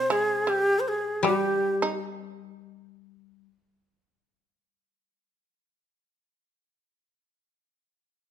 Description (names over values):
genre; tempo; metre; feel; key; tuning
japanese traditional, Japanese chamber music; free time; none; none; C hirajoshi; A4 = 440 Hz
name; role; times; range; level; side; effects
breathy shakuhachi; melody; 0.0-2.0 s; G4 to C5; -24 LUFS; right 1 dB; none
shamisen; second line; 0.0-2.0 s; G3 to Eb4; -31 LUFS; right 5 dB; none
koto; accompaniment; 0.0-3.5 s; C3 to G3; -30 LUFS; left 5 dB; none
room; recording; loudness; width
moderate recital hall reverb, RT60 1.6 s; minimal, uncompressed stereo recording; -23 LUFS; side -10 dB against mid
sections
0.0-8.3 A section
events
none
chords
none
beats
free time